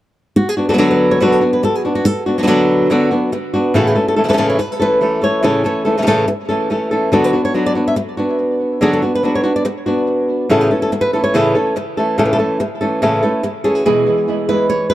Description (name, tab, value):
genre	flamenco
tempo	142 BPM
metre	4/4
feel	straight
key	A major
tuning	A4 = 440 Hz
part	flamenco guitar	melody	0.4-14.9 s	A2 to E5	-13 LUFS	equal	tape echo
part	flamenco guitar	stabs	13.9-14.9 s	E2 to E4	-20 LUFS	right 7 dB	tape echo
room	light reverb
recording	dark, warm production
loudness	-13 LUFS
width	side -14 dB against mid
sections	0.4-13.9 A section; 13.9-14.9 B section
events	none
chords	0.4 D6; 3.7 A; 7.1 D6; 10.5 A; 13.9 E